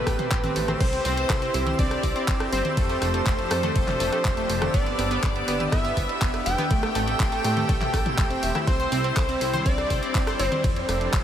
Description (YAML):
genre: progressive house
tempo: 122 BPM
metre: 4/4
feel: straight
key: C major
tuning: A4 = 440 Hz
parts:
  - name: plucky unison lead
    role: melody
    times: 0.0-10.6 s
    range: B4 to G5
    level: -29 LUFS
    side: equal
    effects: cassette tape, sidechain pumping, analog delay
  - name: bright chamber violin section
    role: second line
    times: 0.0-10.6 s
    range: B4 to G5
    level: -34 LUFS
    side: left 3 dB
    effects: sidechain pumping, analog delay
  - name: supersaw pad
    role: sustained chords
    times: 0.0-11.2 s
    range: F3 to A4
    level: -31 LUFS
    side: right 1 dB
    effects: sidechain pumping
  - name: plucky analog bass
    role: bass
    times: 0.0-11.2 s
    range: E1 to A2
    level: -30 LUFS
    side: equal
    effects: sidechain pumping
  - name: twinkling granular texture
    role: texture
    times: 0.0-11.2 s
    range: E6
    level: -37 LUFS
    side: right 3 dB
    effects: built-in reverb, sidechain pumping
  - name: analog pluck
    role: arpeggios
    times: 0.1-10.6 s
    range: A3 to E6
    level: -30 LUFS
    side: equal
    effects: chorus, sidechain pumping, analog delay
  - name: electronic kick drum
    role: drums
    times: 0.1-11.2 s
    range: none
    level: -24 LUFS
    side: equal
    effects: overdrive
  - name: house drum kit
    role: drums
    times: 0.1-11.2 s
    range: crash cymbal, handclaps, hi-hat, ride cymbal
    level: -32 LUFS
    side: equal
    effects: none
  - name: deep house drum kit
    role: percussion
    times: 0.1-11.0 s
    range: congas, rim click, toms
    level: -33 LUFS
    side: left 1 dB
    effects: overdrive, sidechain pumping on snare, sidechain pumping on perc, sidechain pumping on toms
room: moderate huge ambient reverb, RT60 8.0 s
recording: dreamy mix soaked in reverb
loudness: -21 LUFS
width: side -10 dB against mid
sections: 0.0-11.2 A section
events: none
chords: 0.0 Am7; 0.8 C; 2.8 F6; 4.7 G; 6.7 Am7; 8.7 C; 10.6 F6